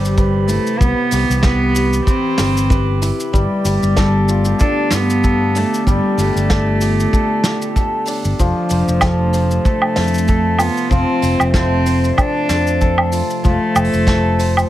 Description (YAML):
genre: folktronica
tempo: 95 BPM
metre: 4/4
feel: swing 56% on 16ths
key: D dorian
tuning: A4 = 439 Hz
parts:
  - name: warm cello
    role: melody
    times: 0.0-14.7 s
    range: F3 to D4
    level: -19 LUFS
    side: equal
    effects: ping-pong delay
  - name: warbly tape-like pad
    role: sustained chords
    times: 0.0-14.7 s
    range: C3 to E5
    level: -26 LUFS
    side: equal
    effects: chorus, built-in reverb
  - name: hammered dulcimer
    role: arpeggios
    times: 0.0-14.7 s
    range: F3 to C5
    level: -21 LUFS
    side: left 1 dB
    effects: ping-pong delay
  - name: fingered electric bass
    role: bass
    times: 0.0-14.6 s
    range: F1 to G2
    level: -18 LUFS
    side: equal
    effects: none
  - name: vintage brush drum kit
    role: drums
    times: 0.1-14.7 s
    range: hi-hat, shaker, snare drum, woodblock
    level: -21 LUFS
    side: right 1 dB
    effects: none
  - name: kick drum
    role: drums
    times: 0.2-14.2 s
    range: none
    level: -16 LUFS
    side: equal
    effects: none
room: light reverb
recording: none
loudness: -13 LUFS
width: side -14 dB against mid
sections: 0.0-14.7 A section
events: none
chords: 0.0 Cmaj7; 3.3 Gadd9; 8.4 Dm7/F; 13.4 F6